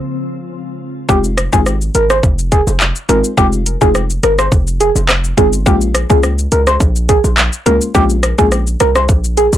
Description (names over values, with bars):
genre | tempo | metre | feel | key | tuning
dancehall | 105 BPM | 4/4 | straight | F minor | A4 = 441 Hz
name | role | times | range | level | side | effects
glassy FM pad | sustained chords | 0.0-1.1 s | Db3 to F4 | -25 LUFS | left 2 dB | ensemble chorus, built-in reverb, sidechain pumping
soft struck synth lead | melody | 1.1-9.5 s | G4 to C5 | -14 LUFS | right 1 dB | chorus, phaser, ping-pong delay
mallet-like synth pluck | accompaniment | 1.1-8.6 s | Ab3 to F4 | -18 LUFS | left 4 dB | chorus
hard-hitting 808-style bass | bass | 1.1-9.6 s | F1 to Db2 | -16 LUFS | equal | tube saturation
island pop drum kit | drums | 1.1-9.6 s | handclaps, hi-hat, kick drum, rim click, shaker | -14 LUFS | equal | soft clipping on snare
bongos | percussion | 1.1-9.6 s | none | -27 LUFS | right 6 dB | none
room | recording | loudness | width
light reverb | blown-out, overdriven recording, overdrive | -10 LUFS | side -12 dB against mid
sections
0.0-1.1 A section; 1.1-9.6 B section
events
break 0.0-1.1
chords
0.0 Bbm7 (rootless); 1.1 Fm7; 5.7 Bbm7